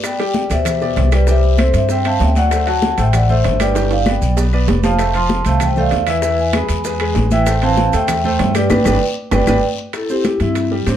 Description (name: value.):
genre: latin, salsa.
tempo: 194 BPM.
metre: 4/4.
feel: straight.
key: C major.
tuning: A4 = 440 Hz.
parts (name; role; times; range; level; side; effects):
clear concert grand piano; accompaniment; 0.0-11.0 s; B2 to G5; -21 LUFS; right 1 dB; none.
bongos; percussion; 0.0-11.0 s; none; -29 LUFS; left 7 dB; none.
claves; percussion; 0.0-9.5 s; none; -30 LUFS; left 5 dB; none.
congas; percussion; 0.0-11.0 s; none; -22 LUFS; equal; none.
guiro; percussion; 0.0-11.0 s; none; -32 LUFS; left 7 dB; none.
maracas; percussion; 0.0-11.0 s; none; -34 LUFS; right 8 dB; none.
timbales; percussion; 0.0-11.0 s; none; -26 LUFS; right 7 dB; none.
vibraphone with medium mallets; melody; 0.1-11.0 s; G3 to C6; -18 LUFS; equal; plate reverb.
upright bass; bass; 0.5-11.0 s; F1 to A2; -17 LUFS; equal; none.
room: light reverb.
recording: dark, warm production.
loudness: -13 LUFS.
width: side -10 dB against mid.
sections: 0.0-9.9 A section; 9.9-11.0 B section.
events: drum fill 3.8-5.0, 9.3-9.9; band accent 8.7-9.9.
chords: 0.0 G; 1.3 C; 2.5 D7; 3.8 G; 5.0 F; 6.2 E; 7.5 Am; 8.7 G; 9.9 C.